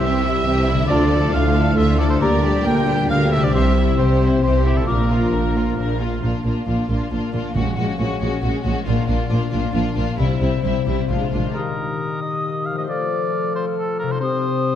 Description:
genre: cinematic, heroic adventure film score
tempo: 136 BPM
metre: 3/4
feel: straight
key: Bb lydian, Eb lydian from 11.5 s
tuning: A4 = 440 Hz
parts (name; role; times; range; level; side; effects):
- warm symphonic violin section; melody; 0.0-11.5 s; E4 to Bb4; -29 LUFS; left 5 dB; none
- warm oboe; second line; 0.0-6.0, 11.5-14.8 s; G4 to G5; -26 LUFS; right 2 dB; none
- warm symphonic violin section; second line; 0.0-11.6 s; C4 to G5; -29 LUFS; left 1 dB; none
- warm symphonic viola section; accompaniment; 0.0-11.5 s; D3 to F4; -26 LUFS; equal; none
- mellow French horn section; sustained chords; 0.0-6.0, 11.6-14.8 s; Eb3 to G4; -27 LUFS; left 4 dB; none
- mellow trombone section; sustained chords; 0.0-6.0 s; A2 to Bb3; -26 LUFS; right 2 dB; none
- concert harp; arpeggios; 0.0-14.8 s; Bb2 to Eb5; -25 LUFS; left 8 dB; none
- dark symphonic cello section; bass; 0.0-11.4 s; Bb2 to D3; -25 LUFS; right 2 dB; none
- rich symphonic double bass section; bass; 0.0-11.4 s; Bb1 to D2; -21 LUFS; right 1 dB; none
- mellow clarinet; second line; 0.9-5.0, 11.5-14.8 s; F4 to A4; -29 LUFS; equal; none
- silver concert flute; second line; 0.9-5.1, 11.6-14.8 s; A5 to F6; -30 LUFS; left 2 dB; none
- timpani; percussion; 7.6-8.2 s; Bb2; -28 LUFS; right 2 dB; none
room: moderate concert hall reverb, RT60 2.4 s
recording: dark, warm production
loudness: -17 LUFS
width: side -10 dB against mid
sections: 0.0-6.2 A section; 6.2-11.5 B section; 11.5-14.8 C section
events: none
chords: 0.0 C; 0.9 Dm; 2.2 Gm/D; 3.5 C; 4.9 Bb; 7.5 Gbadd9/Bb; 8.9 Bb; 10.2 C; 11.1 Bb7; 11.5 Eb; 12.9 F; 14.2 Cm

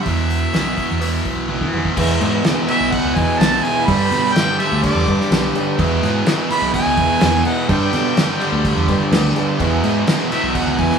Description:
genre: classic rock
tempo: 126 BPM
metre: 4/4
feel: straight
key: unclear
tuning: A4 = 440 Hz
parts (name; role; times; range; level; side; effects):
- warm harmonica; melody; 0.0-11.0 s; D5 to B5; -21 LUFS; right 1 dB; none
- biting overdriven guitar; riff; 0.0-11.0 s; E2 to G3; -20 LUFS; right 1 dB; none
- growling fingered electric bass; bass; 0.1-10.9 s; B1 to E3; -21 LUFS; right 1 dB; overdrive
- cloth-damped thuddy drum kit; drums; 0.1-11.0 s; crash cymbal, hi-hat, kick drum, snare drum, toms; -21 LUFS; equal; none
- dark upright piano; accompaniment; 2.0-11.0 s; G4 to E5; -27 LUFS; equal; none
- raw garage guitar; riff; 2.0-11.0 s; E2 to G3; -24 LUFS; equal; overdrive
room: wet studio reverb, RT60 0.6 s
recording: band playing live in one room, studio ambience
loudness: -15 LUFS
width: side -6 dB against mid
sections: 0.0-2.0 A section; 2.0-11.0 B section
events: drum fill 1.5-2.0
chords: 0.1 E5; 2.0 E; 3.9 G; 5.8 E; 7.7 G; 9.6 E

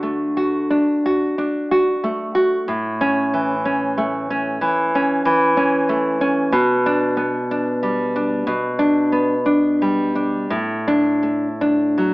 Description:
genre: romantic piece for solo classical guitar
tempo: 54-63 BPM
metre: 4/4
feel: rubato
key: D major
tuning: A4 = 441 Hz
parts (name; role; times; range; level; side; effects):
- nylon-string guitar; solo; 0.0-12.1 s; A2 to F#4; -16 LUFS; equal; none
room: moderate recital hall reverb, RT60 1.6 s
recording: AM radio sound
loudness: -16 LUFS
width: side -22 dB against mid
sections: 0.0-12.1 A section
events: none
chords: 0.0 D; 2.7 A; 6.5 G/B; 10.5 D5/A

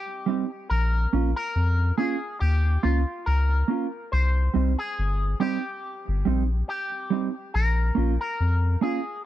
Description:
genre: roots reggae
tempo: 70 BPM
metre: 4/4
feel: swing 57% on 16ths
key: Bb dorian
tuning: A4 = 439 Hz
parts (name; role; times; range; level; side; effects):
- electric guitar with an envelope filter; melody; 0.0-9.2 s; F4 to C5; -31 LUFS; left 2 dB; none
- mellow electric guitar; accompaniment; 0.3-9.0 s; G3 to F4; -25 LUFS; right 6 dB; none
- soft dub sub bass; bass; 0.7-8.8 s; G1 to F2; -22 LUFS; left 1 dB; none
room: little or no reverb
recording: dry, close 1970s-style studio recording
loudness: -22 LUFS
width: side -13 dB against mid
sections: 0.0-9.3 A section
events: none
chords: 0.0 Cm; 0.7 Bbm; 4.1 Cm; 7.5 Bbm

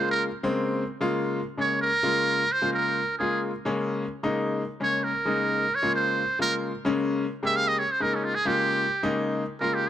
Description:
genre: jazz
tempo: 261 BPM (eighths)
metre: 7/8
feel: straight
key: Db lydian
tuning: A4 = 440 Hz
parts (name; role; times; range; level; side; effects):
- trumpet with metal mute; melody; 0.0-9.9 s; Db4 to F5; -25 LUFS; right 2 dB; none
- bright grand piano; accompaniment; 0.0-9.9 s; Db3 to G4; -27 LUFS; left 2 dB; none
room: light reverb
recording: dark, warm production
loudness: -23 LUFS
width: side -11 dB against mid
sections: 0.0-9.9 A section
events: muted trumpet solo 0.0-9.9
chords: 0.0 Db6

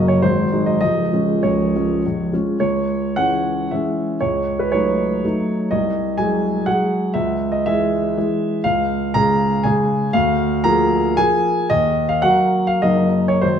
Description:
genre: classical, romantic triple-time dance for piano with dotted rhythms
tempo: 92-133 BPM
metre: 3/4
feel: rubato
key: C# minor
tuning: A4 = 440 Hz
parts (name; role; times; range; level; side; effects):
- warm concert grand piano; solo; 0.0-13.6 s; Db1 to Bb5; -16 LUFS; equal; none
room: wet recital hall reverb, RT60 1.3 s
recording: none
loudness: -16 LUFS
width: side -8 dB against mid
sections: 0.0-2.6 A section; 2.6-13.6 B section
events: none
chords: 0.2 Ab7; 0.8 Db; 2.6 C#m; 4.2 D#m7b5/C#; 5.7 G#7/B#; 7.2 C#m; 8.6 Db; 10.1 Bb7/D; 11.7 Ebm; 12.8 Ebm/Gb

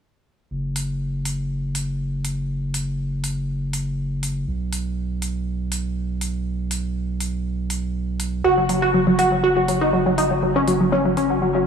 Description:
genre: progressive house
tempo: 121 BPM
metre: 4/4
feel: straight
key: unclear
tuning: A4 = 440 Hz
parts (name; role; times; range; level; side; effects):
- saturated sub bass; bass; 0.5-11.7 s; F#1 to B1; -25 LUFS; right 1 dB; none
- electronic hi-hat; drums; 0.8-11.3 s; none; -29 LUFS; equal; none
- tight sequenced synth; arpeggios; 8.4-11.6 s; F#3 to F#4; -17 LUFS; equal; chorus, phaser, diffuse ambient delay
room: wet cathedral reverb, RT60 4.0 s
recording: dreamy mix soaked in reverb, small room ambience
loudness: -20 LUFS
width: side -7 dB against mid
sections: 0.5-11.7 A section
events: none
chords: 0.5 N.C.; 8.4 F#5

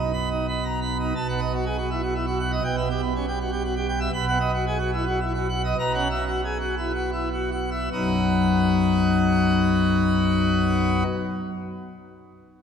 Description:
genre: classical, organ toccata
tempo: 69-123 BPM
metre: 3/4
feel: straight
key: B major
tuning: A4 = 444 Hz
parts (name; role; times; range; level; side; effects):
- pipe organ, plenum; solo; 0.0-11.0 s; B1 to B5; -22 LUFS; equal; none
room: wet church reverb, RT60 2.8 s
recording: minimal, uncompressed stereo recording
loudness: -21 LUFS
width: side -7 dB against mid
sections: 0.0-1.2 A section; 1.2-7.9 B section; 7.9-12.6 C section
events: slowing down 3.4-7.9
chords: 0.0 B; 1.2 B7; 2.7 Em/B; 4.1 B; 5.8 F#7/B; 7.9 B

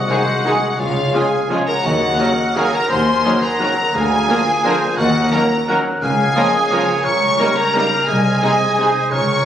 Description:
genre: classical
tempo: 173 BPM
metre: 3/4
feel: uneven beats, rubato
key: Ab major from 6.0 s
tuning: A4 = 440 Hz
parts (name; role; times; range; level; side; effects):
- warm symphonic violin section; melody; 0.0-9.4 s; F5 to Db6; -20 LUFS; left 2 dB; none
- clear clarinet; second line; 0.0-9.4 s; F4 to Db5; -22 LUFS; right 1 dB; none
- silver concert flute; second line; 0.0-9.4 s; Db5 to Bb5; -27 LUFS; left 1 dB; none
- warm oboe; second line; 0.0-9.4 s; Gb4 to Gb5; -25 LUFS; right 2 dB; none
- concert harp; arpeggios; 0.0-9.4 s; C3 to Eb5; -26 LUFS; left 3 dB; none
- warm symphonic cello section; bass; 0.0-9.4 s; C2 to Eb2; -25 LUFS; right 1 dB; none
- warm symphonic double bass section; bass; 0.0-9.4 s; C2 to Eb2; -24 LUFS; equal; none
- warm symphonic violin section; second line; 0.1-8.9 s; Db4 to Bb4; -27 LUFS; equal; none
- clear symphonic viola section; accompaniment; 0.1-8.9 s; Eb3 to C4; -26 LUFS; right 1 dB; none
- clear trombone section; sustained chords; 0.1-8.9 s; C3 to Ab3; -27 LUFS; right 2 dB; none
- warm French horn section; sustained chords; 0.1-8.9 s; Ab3 to F4; -29 LUFS; left 2 dB; none
- clear trumpet section; stabs; 0.1-8.9 s; Ab4 to Bb4; -26 LUFS; right 2 dB; none
- timpani; percussion; 1.8-2.3 s; none; barely audible; none; none
room: wet scoring stage reverb, RT60 1.6 s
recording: recorded on a phone in the room, club reverb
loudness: -14 LUFS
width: side -10 dB against mid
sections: 0.0-9.4 A section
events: none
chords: 0.0 Ab7/C; 0.8 Db; 1.8 Ebm7; 3.9 Bb7/D; 5.0 Ebm7; 6.0 Bbm7/Db; 7.0 Eb7/Db; 8.1 Ab/C

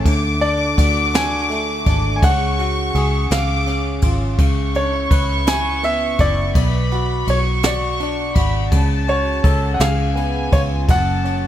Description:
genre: six-eight pop ballad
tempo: 55 BPM (dotted quarters)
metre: 6/8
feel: straight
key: unclear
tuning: A4 = 439 Hz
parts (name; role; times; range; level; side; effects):
- direct-recorded clean electric guitar; accompaniment; 0.0-11.5 s; F#2 to B4; -24 LUFS; right 1 dB; double-tracked left and right
- vintage muted fingered electric bass; bass; 0.0-11.5 s; F#1 to D2; -20 LUFS; equal; none
- warm studio violin section; second line; 0.1-11.5 s; G#5 to D6; -24 LUFS; left 1 dB; ping-pong delay
- jazz brush drum kit; drums; 0.1-11.4 s; kick drum, ride cymbal, snare drum; -21 LUFS; equal; none
- bright concert grand piano; melody; 0.4-11.5 s; C#5 to G#5; -23 LUFS; equal; ping-pong delay
room: studio reverb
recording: none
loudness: -15 LUFS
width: side -11 dB against mid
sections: 0.0-11.5 A section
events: none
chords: 0.1 D; 2.2 C#sus4; 3.3 C#; 4.4 C#m7; 6.6 Bmadd9; 8.7 F#m/C#; 9.8 C#7; 10.9 F#m

